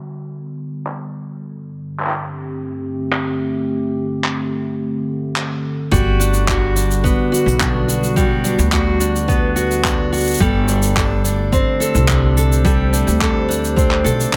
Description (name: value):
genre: folktronica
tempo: 107 BPM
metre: 4/4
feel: straight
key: G major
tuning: A4 = 440 Hz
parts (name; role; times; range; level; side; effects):
- warbly tape-like pad; sustained chords; 0.0-14.4 s; G2 to C5; -26 LUFS; equal; chorus, built-in reverb
- handclaps and shaker; drums; 0.9-14.4 s; none; -25 LUFS; equal; low-pass filter on perc, low-pass filter on snare, low-pass filter on room
- picked steel-string acoustic guitar; arpeggios; 5.9-14.4 s; G3 to A4; -21 LUFS; equal; tape echo
- upright bass; bass; 5.9-14.2 s; G1 to D2; -20 LUFS; equal; none
- electronic kick drum; drums; 5.9-14.4 s; none; -22 LUFS; equal; none
room: light reverb, small room ambience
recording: low-pass filter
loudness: -17 LUFS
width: mono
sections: 0.0-5.9 A section; 5.9-14.4 B section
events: filter sweep on drum 0.0-5.9; filter sweep on ambient pad 0.0-5.9; filter sweep 0.0-5.9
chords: 0.0 Gmaj7; 1.4 D7sus4/G; 5.9 Gmaj7; 10.4 D7sus4/G